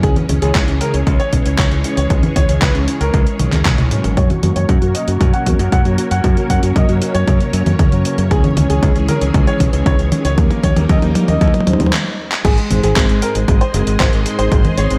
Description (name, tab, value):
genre	italo disco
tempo	116 BPM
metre	4/4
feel	straight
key	unclear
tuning	A4 = 440 Hz
part	clear grand piano	melody	0.0-15.0 s	Ab3 to F#5	-23 LUFS	equal	low-pass filter, digital delay
part	string machine, full ensemble	sustained chords	0.0-15.0 s	E3 to C6	-26 LUFS	equal	ensemble chorus
part	mellow synth brass	stabs	0.0-15.0 s	Ab2 to D#5	-27 LUFS	equal	chorus
part	modern bright fingered electric bass	bass	0.0-15.0 s	Gb1 to F#2	-20 LUFS	equal	none
part	dusty soul sampler-style drum kit	drums	0.0-15.0 s	congas, crash cymbal, handclaps, hi-hat, toms	-22 LUFS	equal	overdrive, gated reverb
part	electronic kick drum	drums	0.0-14.6 s	none	-18 LUFS	equal	none
room	light reverb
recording	vinyl crackle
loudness	-15 LUFS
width	mono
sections	0.0-4.2 A section; 4.2-12.4 B section; 12.4-15.0 C section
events	drum fill 3.4-4.2, 4.2-11.9, 11.9-12.4; stop 11.9-12.4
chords	0.0 C#m; 4.2 F#; 8.3 C#m; 10.4 D#7; 12.4 Ab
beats	| 0.03 0.55 1.07 1.58 | 2.10 2.62 3.14 3.65 | 4.17 4.69 5.21 5.72 | 6.24 6.76 7.28 7.79 | 8.31 8.83 9.34 9.86 | 10.38 10.89 11.41 11.93 | 12.45 12.96 13.48 14.00 | 14.52